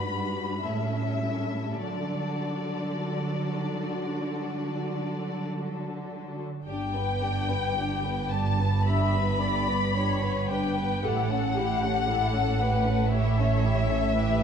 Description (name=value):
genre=classical, slow romantic movement for string orchestra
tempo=48-59 BPM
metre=4/4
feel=rubato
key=unclear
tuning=A4 = 440 Hz
part: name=rich symphonic violin section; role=melody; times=0.0-14.4 s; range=D5 to B5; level=-31 LUFS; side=left 5 dB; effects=none
part: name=rich studio violin section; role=second line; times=0.0-14.4 s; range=B3 to B4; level=-34 LUFS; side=left 4 dB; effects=none
part: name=rich symphonic viola section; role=accompaniment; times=0.0-14.4 s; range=F#3 to E5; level=-33 LUFS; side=equal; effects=none
part: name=rich symphonic cello section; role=bass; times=0.0-14.4 s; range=G2 to D3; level=-29 LUFS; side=right 4 dB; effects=none
part: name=rich symphonic double bass section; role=bass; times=6.7-14.4 s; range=G1 to A1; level=-32 LUFS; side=right 2 dB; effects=none
room=moderate concert hall reverb, RT60 2.2 s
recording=dark, warm production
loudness=-25 LUFS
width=side -7 dB against mid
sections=0.0-6.7 A section; 6.7-14.4 B section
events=none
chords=0.0 Gmaj7; 0.6 A7; 1.8 D; 6.7 G; 11.0 A7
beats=0.65 | 1.83 3.07 4.29 5.50 | 6.67 7.77 8.87 9.96 | 11.05 12.08 13.12 14.15